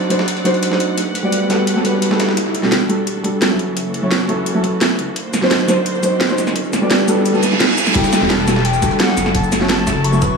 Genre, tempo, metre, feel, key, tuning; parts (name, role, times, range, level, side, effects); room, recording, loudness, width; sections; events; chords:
liquid drum and bass; 172 BPM; 4/4; straight; E dorian; A4 = 438 Hz
dark grand piano; accompaniment; 0.0-10.4 s; F#3 to D5; -17 LUFS; right 1 dB; low-pass filter, tape echo
clear studio string section; sustained chords; 0.0-10.4 s; Eb3 to F#5; -26 LUFS; equal; sidechain pumping
riser, reverse cymbal and downlifter; sound effects; 0.8-10.4 s; -24 LUFS; right 2 dB
drum and bass drum kit; drums; 0.1-10.3 s; hi-hat, shaker, snare drum; -18 LUFS; right 1 dB
dusty soul sampler-style drum kit; drums; 0.1-2.4, 8.0-10.3 s; hi-hat, snare drum; -25 LUFS; equal; overdrive, high-pass filter on hats, high-pass filter on snare, high-pass filter on room, tape echo
electronic kick drum; drums; 2.4-10.3 s; -23 LUFS; equal; high-pass filter on kick, high-pass filter on room
dark detuned saw bass; bass; 2.6-10.3 s; D1 to C#2; -23 LUFS; equal; high-pass filter
silver concert flute; melody; 8.0-10.4 s; F#5 to C#6; -23 LUFS; left 4 dB; dub echo
wet spring reverb, RT60 1.9 s; echo-heavy mix, small room ambience; -14 LUFS; side -5 dB against mid
0.0-2.4 A section; 2.4-8.0 B section; 8.0-10.4 C section
riser 0.8-2.4, 2.4-8.0; build-up 2.4-8.0; filter sweep on grand piano 2.4-8.0; reverse cymbal 7.3-8.0; drop 8.0-10.4
0.0 D7b9; 1.0 Gmaj9; 2.4 Em11; 3.6 F#m7; 5.2 D7b9; 6.6 Gmaj9; 8.0 Em11; 9.2 F#m7